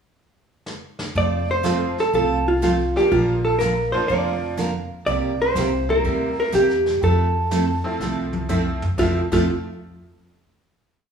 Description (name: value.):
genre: country, western swing.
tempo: 123 BPM.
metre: 4/4.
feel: swing 69% on 8ths.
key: F major.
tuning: A4 = 441 Hz.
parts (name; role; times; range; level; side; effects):
vintage brush drum kit; drums; 0.7-9.4 s; brushed snare drum, crash cymbal, hi-hat, kick drum, snare drum, toms; -31 LUFS; left 1 dB; none.
vintage hollow-body jazz guitar; melody; 1.2-9.5 s; F4 to D5; -20 LUFS; equal; none.
picked steel-string acoustic guitar; accompaniment; 1.2-9.4 s; C3 to Bb4; -25 LUFS; right 4 dB; none.
upright bass; bass; 1.2-9.5 s; F1 to F2; -25 LUFS; equal; none.
tack piano; accompaniment; 1.6-9.5 s; F3 to F4; -29 LUFS; equal; none.
room: moderate large studio reverb, RT60 1.2 s.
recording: band playing live in one room, studio ambience.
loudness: -18 LUFS.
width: side -7 dB against mid.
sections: 0.0-1.2 pickup bar; 1.2-9.0 A section; 9.0-10.9 final chord.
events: drum fill 0.7-1.2, 8.0-9.0.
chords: 0.0 N.C.; 1.2 F; 3.1 Bb; 5.1 C7; 7.0 Fmaj7.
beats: 0.17 0.66 | 1.15 1.64 2.13 2.62 | 3.11 3.60 4.09 4.58 | 5.07 5.56 6.05 6.54 | 7.03 7.51 8.00 8.49 | 8.98.